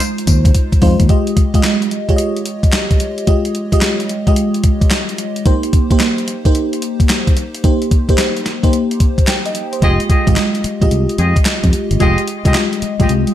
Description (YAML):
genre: R&B, new jack swing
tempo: 110 BPM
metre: 4/4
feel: swing 65% on 16ths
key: F minor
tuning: A4 = 440 Hz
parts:
  - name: FM electric piano with soft pad layer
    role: accompaniment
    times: 0.0-13.3 s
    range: G3 to G5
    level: -17 LUFS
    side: equal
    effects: chorus, phaser
  - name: crisp 8-bit digital drum machine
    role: drums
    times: 0.0-13.3 s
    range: handclaps, hi-hat, kick drum, snare drum, tambourine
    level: -14 LUFS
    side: equal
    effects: gated reverb
  - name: fingered electric bass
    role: bass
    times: 0.3-1.1, 9.8-13.2 s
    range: F1 to F2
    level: -16 LUFS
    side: equal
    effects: none
  - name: mellow horn section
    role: stabs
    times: 9.8-13.1 s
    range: F4 to Eb5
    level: -21 LUFS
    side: left 1 dB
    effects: ping-pong delay
room: light reverb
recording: none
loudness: -12 LUFS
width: side -12 dB against mid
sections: 0.0-1.1 A section; 1.1-13.3 B section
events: drum fill 0.5-1.1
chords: 0.0 Fm7; 1.1 Fm9; 5.5 Cm7; 9.8 Fm9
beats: 0.00 0.55 | 1.09 1.64 2.18 2.73 | 3.27 3.82 4.37 4.91 | 5.46 6.00 6.55 7.09 | 7.64 8.18 8.73 9.28 | 9.82 10.37 10.91 11.46 | 12.00 12.55 13.09